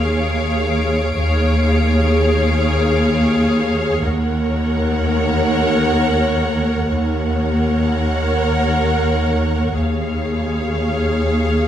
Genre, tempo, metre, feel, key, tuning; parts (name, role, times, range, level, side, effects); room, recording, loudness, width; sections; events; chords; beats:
cinematic; free time; Eb minor; A4 = 440 Hz
rich symphonic violin section; melody; 0.0-11.7 s; F5 to Gb5; -25 LUFS; left 1 dB
rich symphonic violin section; second line; 0.0-11.7 s; Db5; -24 LUFS; left 1 dB
clear symphonic viola section; accompaniment; 0.0-11.7 s; Ab4 to Bb4; -23 LUFS; right 1 dB
clear symphonic cello section; bass; 0.0-11.7 s; Eb2; -21 LUFS; equal
rich symphonic double bass section; bass; 0.0-11.7 s; Eb2; -22 LUFS; equal
pure sine sub bass; drone; 0.0-11.7 s; Eb2; -23 LUFS; equal
clear symphonic violin section; texture; 0.0-3.5 s; Db5 to D7; -30 LUFS; left 2 dB
wet stone room reverb, RT60 1.0 s; heard from further back in the room; -15 LUFS; side -10 dB against mid
0.0-11.7 A section
0.0 Dbadd9/Eb; 4.1 Ebm7; 9.8 Dbadd9/Eb
free time